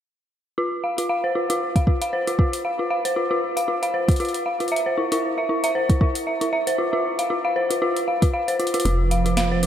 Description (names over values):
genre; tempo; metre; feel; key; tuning
IDM; 116 BPM; 4/4; swing 56% on 16ths; unclear; A4 = 440 Hz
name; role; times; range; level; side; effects
dark detuned synth bell; arpeggios; 0.6-9.7 s; E4 to F5; -21 LUFS; equal; chorus, low-pass filter, tape echo
electro analog drum machine; drums; 1.0-9.7 s; hi-hat, snare drum; -29 LUFS; equal; none
electronic kick drum; drums; 1.8-8.3 s; none; -18 LUFS; equal; none
warbly tape-like pad; sustained chords; 9.0-9.7 s; F3 to A4; -24 LUFS; right 6 dB; chorus, built-in reverb
woody FM bass; bass; 8.9-9.7 s; F1; -22 LUFS; equal; tube saturation
room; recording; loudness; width
wet cathedral reverb, RT60 6.3 s; dreamy mix soaked in reverb; -20 LUFS; side -10 dB against mid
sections
0.6-8.9 A section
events
drum fill 8.6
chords
0.6 F5; 4.7 N.C.; 6.8 F5; 8.9 F